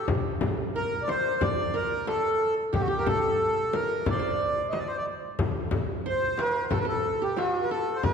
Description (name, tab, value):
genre	Arabic maqam ensemble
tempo	91 BPM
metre	4/4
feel	straight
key	D maqam hijaz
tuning	A4 = 440 Hz
part	accordion	melody	0.0-8.1 s	F#4-50c to Eb5+25c	-27 LUFS	equal	none
part	qanun	second line	0.0-8.1 s	F#4-50c to D5	-32 LUFS	right 2 dB	none
part	darbuka	percussion	0.1-8.1 s	none	-33 LUFS	left 1 dB	none
part	frame drum	percussion	0.1-8.1 s	none	-32 LUFS	left 3 dB	none
room	wet concert hall reverb, RT60 2.1 s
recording	recorded in a church or concert hall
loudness	-25 LUFS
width	side -6 dB against mid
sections	0.0-5.4 A section; 5.4-8.1 B section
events	none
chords	none